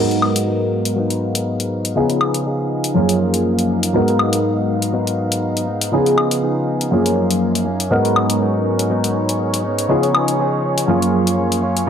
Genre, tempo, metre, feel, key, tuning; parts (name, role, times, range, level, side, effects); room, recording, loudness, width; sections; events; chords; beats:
filtered disco house; 121 BPM; 4/4; swing 54% on 16ths; G# dorian; A4 = 440 Hz
dark grand piano; accompaniment; 0.0-11.9 s; F#2 to A#4; -17 LUFS; equal; phaser, low-pass filter
clear studio violin section; sustained chords; 0.0-11.9 s; C#4 to E#5; -26 LUFS; right 2 dB; low-pass filter
direct-recorded clean electric guitar; riff; 0.0-11.9 s; E#3 to G#4; -22 LUFS; left 3 dB; vintage 12-bit sampler grit, low-pass filter
electronic hi-hat and woodblock; drums; 0.1-11.9 s; -21 LUFS; left 3 dB; overdrive
light reverb; -15 LUFS; side -8 dB against mid
0.0-11.9 A section
filter sweep 0.0-11.9
0.0 G#m7; 2.0 C#9; 3.0 F#maj7; 3.9 G#m7; 5.9 C#9; 6.9 F#maj7; 7.9 G#m7; 9.9 C#9; 10.9 F#maj7
0.47 0.97 1.47 | 1.96 2.46 2.95 3.45 | 3.95 4.44 4.94 5.43 | 5.93 6.42 6.92 7.42 | 7.91 8.41 8.90 9.40 | 9.90 10.39 10.89 11.38 | 11.88